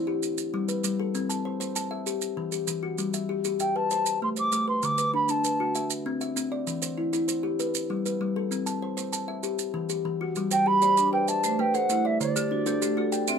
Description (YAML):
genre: southern african traditional, mbira-style interlocking cycle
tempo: 130 BPM (dotted quarters)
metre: 12/8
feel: straight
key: G major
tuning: A4 = 439 Hz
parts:
  - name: kalimba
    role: arpeggios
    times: 0.0-13.4 s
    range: D3 to A5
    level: -28 LUFS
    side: left 3 dB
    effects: none
  - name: maracas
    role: percussion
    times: 0.2-13.4 s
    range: none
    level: -33 LUFS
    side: right 9 dB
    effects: none
  - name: baroque flute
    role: melody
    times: 3.6-5.9, 10.5-13.4 s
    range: D5 to D6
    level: -24 LUFS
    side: right 1 dB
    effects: none
  - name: marimba with hard mallets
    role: arpeggios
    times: 10.5-13.4 s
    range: D3 to E5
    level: -29 LUFS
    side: right 6 dB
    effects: tape echo
room: moderate studio reverb, RT60 0.5 s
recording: none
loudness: -24 LUFS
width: side -7 dB against mid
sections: 0.0-10.4 A section; 10.4-13.4 A section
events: none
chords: 0.2 G; 1.1 C; 2.1 Em; 3.0 G; 3.9 Am; 4.8 D; 5.8 C; 6.7 Em; 7.6 G; 8.5 C; 9.4 Em; 10.4 G; 11.3 Am; 12.2 D